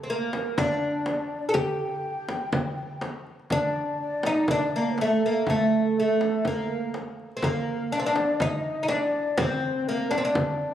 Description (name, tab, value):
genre	Arabic maqam ensemble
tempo	123 BPM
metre	4/4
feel	straight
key	unclear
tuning	A4 = 440 Hz
part	oud	melody	0.0-10.7 s	A3 to A4	-25 LUFS	equal	none
part	breathy mellow ney	second line	0.1-10.7 s	A4 to A5	-32 LUFS	left 3 dB	none
part	darbuka	percussion	0.3-10.7 s	none	-35 LUFS	right 1 dB	none
part	frame drum	percussion	0.3-10.5 s	none	-32 LUFS	equal	none
room	moderate recital hall reverb, RT60 1.5 s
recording	recorded on a phone in the room, club reverb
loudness	-23 LUFS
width	side -10 dB against mid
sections	0.0-3.5 A section; 3.5-10.7 B section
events	none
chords	none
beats	0.10 0.58 1.07 | 1.56 2.05 2.54 3.03 | 3.52 4.01 4.50 4.99 | 5.47 5.96 6.45 6.94 | 7.43 7.92 8.41 8.90 | 9.39 9.88 10.36